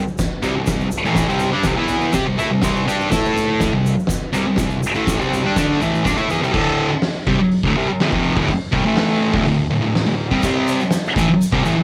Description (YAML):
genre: garage rock duo or trio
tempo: 123 BPM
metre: 4/4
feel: straight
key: unclear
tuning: A4 = 438 Hz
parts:
  - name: thick fuzz guitar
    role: riff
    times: 0.0-11.8 s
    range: D2 to A4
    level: -19 LUFS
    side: equal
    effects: distortion, cassette tape
  - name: egg shaker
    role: percussion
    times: 0.1-6.5, 10.4-11.8 s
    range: none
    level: -38 LUFS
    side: equal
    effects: none
  - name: oversized low-tuned drum kit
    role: drums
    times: 0.2-11.6 s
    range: crash cymbal, hi-hat, kick drum, snare drum, toms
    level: -25 LUFS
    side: equal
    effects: cassette tape
room: moderate booth ambience, RT60 0.3 s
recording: home recording on cassette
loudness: -18 LUFS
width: mono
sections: 0.0-6.5 A section; 6.5-11.8 B section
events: none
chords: 0.0 C5; 3.1 A5; 3.7 C5; 6.5 D5; 8.9 A5; 9.3 D5; 10.4 C5